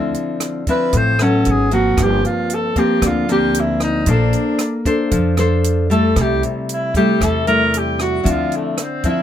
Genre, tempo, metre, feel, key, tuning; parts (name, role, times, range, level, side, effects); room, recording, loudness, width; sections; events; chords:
bossa nova; 115 BPM; 4/4; straight; D minor; A4 = 440 Hz
nylon-string guitar; accompaniment; 0.0-9.2 s; G2 to C5; -18 LUFS; left 2 dB
upright bass; bass; 0.0-8.5 s; G1 to F2; -20 LUFS; right 1 dB
compact cocktail drum kit; drums; 0.1-9.2 s; hi-hat, kick drum, rim click; -23 LUFS; right 1 dB
breathy alto saxophone; melody; 0.7-9.2 s; A3 to C5; -19 LUFS; right 2 dB
light reverb; faint mains hum; -14 LUFS; side -10 dB against mid
0.0-9.2 A section
alto saxophone solo 0.0-9.2
0.0 Dm9; 1.5 G#m11; 2.0 Gm7; 4.1 Bbmaj9; 6.2 Am7/C; 8.3 Dm9